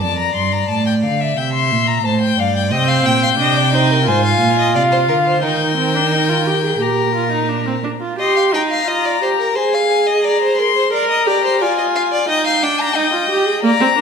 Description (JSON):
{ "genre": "classical, baroque-style fugue for string quartet", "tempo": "88 BPM", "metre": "4/4", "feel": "straight", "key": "Eb major", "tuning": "A4 = 440 Hz", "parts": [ { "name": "warm violin", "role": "melody", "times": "0.0-14.0 s", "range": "E5 to C6", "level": "-18 LUFS", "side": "left 10 dB", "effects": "none" }, { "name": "rich violin", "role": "second line", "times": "0.0-14.0 s", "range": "Bb4 to Bb5", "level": "-20 LUFS", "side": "left 3 dB", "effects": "none" }, { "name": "dark cello", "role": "bass", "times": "0.0-7.8 s", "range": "F2 to Eb3", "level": "-19 LUFS", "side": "right 4 dB", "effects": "none" }, { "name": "warm viola", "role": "accompaniment", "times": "2.7-14.0 s", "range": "Bb3 to Bb4", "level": "-18 LUFS", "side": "right 4 dB", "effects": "none" } ], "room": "wet recital hall reverb, RT60 1.5 s", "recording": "minimal, uncompressed stereo recording", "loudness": "-13 LUFS", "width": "side -6 dB against mid", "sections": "0.0-8.2 A section; 8.2-14.0 B section", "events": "none", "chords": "0.0 Dm/F; 1.4 C; 2.7 Cm; 4.1 Fm/Ab; 5.4 Eb; 6.8 Bb; 8.2 Eb; 9.6 Ab; 10.9 Bb7; 12.3 Eb", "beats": "| 0.03 0.70 1.38 2.05 | 2.72 3.40 4.07 4.75 | 5.43 6.12 6.82 7.51 | 8.20 8.88 9.56 10.24 | 10.93 11.61 12.29 12.96 | 13.63" }